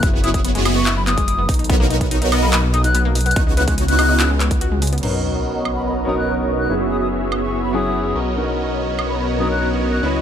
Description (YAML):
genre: future bass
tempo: 144 BPM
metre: 4/4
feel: half-time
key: B major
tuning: A4 = 440 Hz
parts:
  - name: mellow hollow silver concert flute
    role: melody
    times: 0.0-10.1 s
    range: B5 to F#6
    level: -24 LUFS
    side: left 2 dB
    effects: sidechain pumping, ping-pong delay
  - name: wide unison pluck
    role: arpeggios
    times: 0.0-5.0 s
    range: G#3 to F#4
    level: -26 LUFS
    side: left 3 dB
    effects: sidechain pumping, tape echo
  - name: supersaw chords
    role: riff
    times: 0.0-10.2 s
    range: B3 to E5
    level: -22 LUFS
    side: right 2 dB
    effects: phaser, sidechain pumping, low-pass filter
  - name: wide detuned saw bass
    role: bass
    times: 0.0-10.2 s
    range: F#1 to C#2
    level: -21 LUFS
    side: equal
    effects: chorus, sidechain pumping
  - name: big-room dance drum kit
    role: drums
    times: 0.0-9.1 s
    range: crash cymbal, handclaps, hi-hat, woodblock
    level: -24 LUFS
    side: right 1 dB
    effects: overdrive, studio reverb
  - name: electronic kick drum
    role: drums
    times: 0.0-4.6 s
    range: none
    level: -19 LUFS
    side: equal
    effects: overdrive, studio reverb
  - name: warm concert grand piano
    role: accompaniment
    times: 5.0-10.2 s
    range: F#3 to D#5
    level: -24 LUFS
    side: left 2 dB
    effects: sidechain pumping, tape echo
  - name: ethereal airy pad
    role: sustained chords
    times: 5.6-10.2 s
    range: C#3 to D#5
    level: -30 LUFS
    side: right 1 dB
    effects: none
  - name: sub drop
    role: sound effects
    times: 5.0-6.7 s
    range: none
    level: -29 LUFS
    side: equal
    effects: none
room: light reverb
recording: none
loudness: -16 LUFS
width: side -9 dB against mid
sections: 0.0-5.0 A section; 5.0-10.2 B section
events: drop 0.0-5.0; break 4.6-5.0; impact 5.0-6.7; filter sweep on supersaw synth 5.0-10.2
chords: 0.0 F#9sus4; 1.5 Bmaj9; 3.4 C#m11; 5.0 Bmaj9; 6.7 F#9sus4; 8.2 Bmaj9